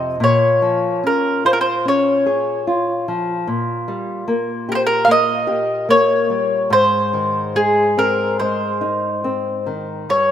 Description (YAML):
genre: fado-style ballad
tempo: 73 BPM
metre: 4/4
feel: rubato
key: unclear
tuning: A4 = 440 Hz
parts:
  - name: mandolin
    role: melody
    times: 0.0-10.3 s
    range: Ab4 to F5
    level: -16 LUFS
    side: equal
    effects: none
  - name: nylon-string guitar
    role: accompaniment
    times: 0.0-10.3 s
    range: F2 to Ab4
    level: -20 LUFS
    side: left 2 dB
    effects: none
room: moderate lush hall reverb, RT60 2.8 s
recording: rough home demo mix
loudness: -15 LUFS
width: side -10 dB against mid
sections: 0.0-10.3 A section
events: none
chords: 0.2 Bbm7; 3.5 Eb/Bb; 6.7 Ab